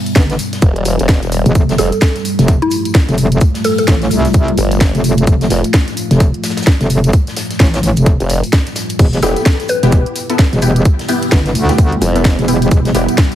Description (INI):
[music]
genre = bass house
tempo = 129 BPM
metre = 4/4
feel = swing 60% on 16ths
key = unclear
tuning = A4 = 440 Hz
[part]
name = deep dark ambient pad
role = sustained chords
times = 0.0-13.3 s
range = G3 to F4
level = -20 LUFS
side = equal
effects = chorus, built-in reverb, sidechain pumping
[part]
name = garage drum kit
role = drums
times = 0.1-13.3 s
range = crash cymbal, hi-hat, snare drum, tambourine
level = -21 LUFS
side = equal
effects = overdrive, studio reverb
[part]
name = metallic wobble bass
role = bass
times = 0.2-12.9 s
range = E1 to D2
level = -13 LUFS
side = equal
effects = chorus, sidechain pumping
[part]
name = electronic kick drum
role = drums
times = 0.2-13.3 s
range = none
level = -10 LUFS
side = equal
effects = overdrive, studio reverb
[part]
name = modern studio drum kit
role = drums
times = 0.2-13.3 s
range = hi-hat, shaker, snare drum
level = -30 LUFS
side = equal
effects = none
[part]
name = formant-sweep wobble bass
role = bass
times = 0.6-13.1 s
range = E1 to G1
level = -15 LUFS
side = equal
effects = chorus, overdrive, sidechain pumping
[part]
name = mallet-like synth pluck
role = melody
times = 1.8-3.8, 9.2-10.1 s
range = E4 to B4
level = -19 LUFS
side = left 1 dB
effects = chorus, vintage 12-bit sampler grit, ping-pong delay
[part]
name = orchestra-hit-like synth stab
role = stabs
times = 9.2-13.3 s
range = B3 to A4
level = -20 LUFS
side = left 1 dB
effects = built-in reverb, phaser, sidechain pumping, ping-pong delay
[sound]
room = light reverb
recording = heavily compressed radio sound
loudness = -10 LUFS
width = side -12 dB against mid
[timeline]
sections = 0.0-13.3 A section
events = none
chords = 0.0 Em; 1.6 Fadd9; 9.0 Em